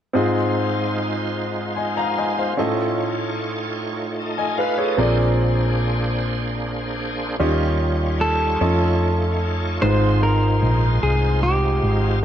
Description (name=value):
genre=gospel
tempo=50 BPM (dotted quarters)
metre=6/8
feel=straight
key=Ab major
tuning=A4 = 440 Hz
part: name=clear grand piano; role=accompaniment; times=0.1-12.2 s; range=Ab2 to Bb5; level=-23 LUFS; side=equal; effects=none
part: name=bright tonewheel organ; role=sustained chords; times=0.2-12.2 s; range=G3 to A5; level=-26 LUFS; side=right 1 dB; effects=fast rotary speaker, overdrive, chorus vibrato
part: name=hollow-body short-scale fingered electric bass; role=bass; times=5.0-12.2 s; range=Ab1 to F2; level=-21 LUFS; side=equal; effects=none
part: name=clean electric guitar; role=melody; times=8.2-12.2 s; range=G4 to C5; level=-23 LUFS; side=equal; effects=tape echo
room=light reverb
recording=dark, warm production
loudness=-18 LUFS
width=side -10 dB against mid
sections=0.2-9.8 A section; 9.8-12.2 B section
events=none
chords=0.2 Ab6; 2.6 Faug7/A; 5.0 Bb9; 7.4 Eb9; 8.6 Faug7; 9.8 Ab6